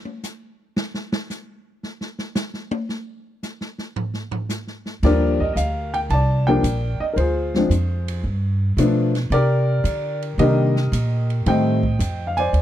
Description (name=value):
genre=jazz piano trio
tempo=112 BPM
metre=4/4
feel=swing 69% on 8ths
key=unclear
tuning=A4 = 439 Hz
part: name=open jazz drum kit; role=drums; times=0.1-12.6 s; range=crash cymbal, hi-hat, kick drum, ride cymbal, snare drum, toms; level=-29 LUFS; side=right 1 dB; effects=none
part: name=warm baby grand piano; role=melody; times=5.0-12.6 s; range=Eb3 to A5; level=-20 LUFS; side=left 2 dB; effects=none
part: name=upright bass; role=bass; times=5.0-12.6 s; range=Bb1 to D3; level=-20 LUFS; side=right 1 dB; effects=none
room=studio reverb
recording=dry, close 1970s-style studio recording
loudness=-19 LUFS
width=side -12 dB against mid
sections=0.0-5.0 A section; 5.0-12.6 B section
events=grand piano solo 0.0-5.0; drum solo 0.0-5.0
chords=0.0 N.C.; 5.0 Ebmaj7; 7.2 Dm7b5; 8.2 G7; 9.3 Cm7; 11.5 Am7b5